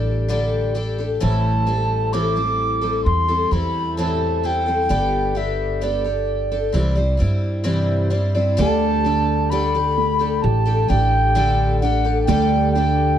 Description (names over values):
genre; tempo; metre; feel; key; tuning
acoustic folk duo or small band; 65 BPM; 4/4; straight; unclear; A4 = 440 Hz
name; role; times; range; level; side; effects
picked twelve-string acoustic guitar; accompaniment; 0.0-13.2 s; A2 to D5; -23 LUFS; left 2 dB; none
upright bass; bass; 0.0-13.2 s; G1 to G2; -21 LUFS; equal; none
baroque flute; melody; 1.2-13.2 s; D5 to D6; -21 LUFS; equal; none
dark upright piano; arpeggios; 8.6-13.2 s; A3 to G4; -24 LUFS; right 4 dB; none
room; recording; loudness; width
light reverb; dark, warm production; -17 LUFS; side -10 dB against mid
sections
0.0-8.6 A section; 8.6-13.2 A section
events
none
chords
0.0 Dsus4; 1.2 Am7; 4.9 Gadd9; 6.7 Cadd9; 8.6 Dsus4